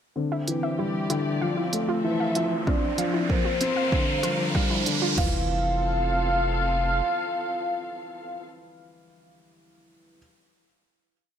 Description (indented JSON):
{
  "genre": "piano and strings electronica",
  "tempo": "96 BPM",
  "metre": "4/4",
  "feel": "straight",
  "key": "F major",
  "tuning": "A4 = 440 Hz",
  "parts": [
    { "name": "warm velvety synth lead", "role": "melody", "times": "0.2-8.4 s", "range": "C5 to F5", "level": "-28 LUFS", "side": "equal", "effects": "chorus, tremolo" },
    { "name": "muted studio string section", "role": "sustained chords", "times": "0.2-8.4 s", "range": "E3 to F5", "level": "-34 LUFS", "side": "left 1 dB", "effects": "sidechain pumping" },
    { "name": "dark concert grand piano", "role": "riff", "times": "0.2-10.2 s", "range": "D3 to C4", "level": "-29 LUFS", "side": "left 2 dB", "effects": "none" },
    { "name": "round analog bass", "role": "bass", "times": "0.2-7.0 s", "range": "F1 to C2", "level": "-33 LUFS", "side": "right 1 dB", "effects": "sidechain pumping, high-pass filter" },
    { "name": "riser", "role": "sound effects", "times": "2.0-5.2 s", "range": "none", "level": "-31 LUFS", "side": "right 2 dB", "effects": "none" },
    { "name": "warbly dusty pluck", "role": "arpeggios", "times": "0.3-5.5 s", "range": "E4 to F5", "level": "-33 LUFS", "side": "right 1 dB", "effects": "chorus, sidechain pumping, ping-pong delay" },
    { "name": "electronic hi-hat", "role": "drums", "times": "0.5-5.0 s", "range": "none", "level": "-30 LUFS", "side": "right 3 dB", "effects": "none" },
    { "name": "deep house drum kit", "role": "drums", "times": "2.7-5.3 s", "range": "crash cymbal, kick drum, toms", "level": "-27 LUFS", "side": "right 1 dB", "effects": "none" }
  ],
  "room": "moderate recital hall reverb, RT60 1.3 s, digital ambience",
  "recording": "none",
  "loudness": "-23 LUFS",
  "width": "side -8 dB against mid",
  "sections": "0.2-5.2 build; 5.2-7.7 final chord",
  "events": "build-up 0.2-5.2; filter sweep on soft synth lead 0.2-5.2; riser 2.0-5.2",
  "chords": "0.2 Cadd9; 1.4 Fmaj7; 2.7 Bbsus2; 3.9 Gm7; 5.2 Fmaj7"
}